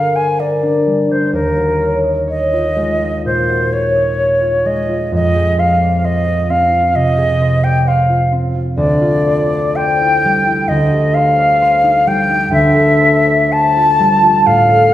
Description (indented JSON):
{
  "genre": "classical, impressionist duo for flute and harp",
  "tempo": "64 BPM",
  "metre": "4/4",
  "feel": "uneven beats, rubato",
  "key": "F dorian",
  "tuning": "A4 = 440 Hz",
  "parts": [
    { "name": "silver concert flute", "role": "melody", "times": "0.0-14.9 s", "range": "Bb4 to A5", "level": "-13 LUFS", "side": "left 1 dB", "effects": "none" },
    { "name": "concert harp", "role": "accompaniment", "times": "0.0-14.9 s", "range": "D2 to Eb5", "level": "-15 LUFS", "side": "equal", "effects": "none" }
  ],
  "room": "wet recital hall reverb, RT60 1.4 s",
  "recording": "heard from further back in the room",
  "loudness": "-11 LUFS",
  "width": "side -13 dB against mid",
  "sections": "0.0-14.9 A section",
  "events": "none",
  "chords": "0.0 Gm7; 1.3 Ebm11; 5.1 Fm; 8.8 Dm11; 10.7 Cmadd9/D; 12.5 Dm11"
}